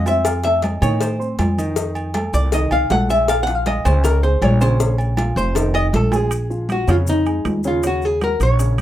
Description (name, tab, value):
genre	Afro-Cuban jazz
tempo	158 BPM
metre	4/4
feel	straight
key	Bb minor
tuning	A4 = 441 Hz
part	archtop guitar, miked and amplified	melody	0.0-8.8 s	Eb4 to Gb5	-20 LUFS	left 1 dB	none
part	dark baby grand piano	accompaniment	0.0-8.8 s	Db3 to C6	-26 LUFS	right 1 dB	none
part	upright bass	bass	0.0-8.8 s	F1 to A2	-19 LUFS	equal	none
part	maracas	percussion	0.1-8.8 s	none	-36 LUFS	left 6 dB	none
part	timbales and agogo bells	percussion	0.1-8.8 s	none	-27 LUFS	right 4 dB	none
part	cowbell	percussion	0.2-6.1 s	none	-25 LUFS	left 7 dB	none
part	congas	percussion	0.3-8.8 s	none	-26 LUFS	left 1 dB	none
room	light reverb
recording	rough home demo mix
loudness	-16 LUFS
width	side -12 dB against mid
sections	0.0-6.3 A section; 6.3-8.8 B section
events	drum fill 0.0, 5.6-6.3; hollow-body jazz guitar solo 0.0-6.3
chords	0.3 F7; 3.3 Bbm7; 5.6 F7; 6.3 Bbm7; 7.8 Ebm7